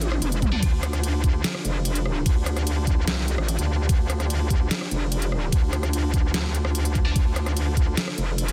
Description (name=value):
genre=heavy wobble dubstep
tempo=147 BPM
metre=4/4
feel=half-time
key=D minor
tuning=A4 = 441 Hz
part: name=supersaw chords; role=sustained chords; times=0.0-8.5 s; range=D3 to C5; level=-35 LUFS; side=equal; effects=phaser, vintage 12-bit sampler grit, sidechain pumping, low-pass filter
part: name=metallic wobble bass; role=bass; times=0.0-8.5 s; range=F1 to D2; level=-27 LUFS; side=equal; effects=chorus, overdrive
part: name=dubstep drum kit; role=drums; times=0.0-8.5 s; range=hi-hat, ride cymbal, rim click, snare drum, toms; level=-32 LUFS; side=equal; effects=soft clipping on snare
part: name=electronic kick drum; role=drums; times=0.4-7.9 s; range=none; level=-24 LUFS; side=equal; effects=none
part: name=high-gain distorted guitar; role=stabs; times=0.5-0.6, 7.1 s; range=D4 to D5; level=-37 LUFS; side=equal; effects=distortion, tape echo
room=little or no reverb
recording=dense, heavily limited modern master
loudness=-24 LUFS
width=mono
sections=0.0-8.5 A section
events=drum fill 0.0-0.6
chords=0.0 Dm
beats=0.22 | 0.63 1.03 1.44 1.85 | 2.26 2.67 3.08 3.48 | 3.89 4.30 4.71 5.12 | 5.52 5.93 6.34 6.75 | 7.16 7.57 7.97 8.38